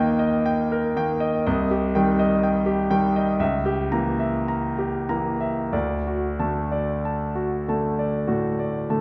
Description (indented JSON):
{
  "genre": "classical, romantic nocturne for solo piano",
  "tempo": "45-63 BPM",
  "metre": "4/4",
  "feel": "rubato",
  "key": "unclear",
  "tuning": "A4 = 440 Hz",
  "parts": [
    { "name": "clear concert grand piano", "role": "solo", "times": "0.0-9.0 s", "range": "C2 to A#5", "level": "-23 LUFS", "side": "equal", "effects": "none" }
  ],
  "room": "wet recital hall reverb, RT60 1.5 s",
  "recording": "dark, warm production",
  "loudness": "-23 LUFS",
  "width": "mono",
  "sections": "0.0-9.0 A section",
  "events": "none",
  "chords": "0.0 Eb/Bb; 1.5 Cm; 3.4 C#dim7; 5.7 D"
}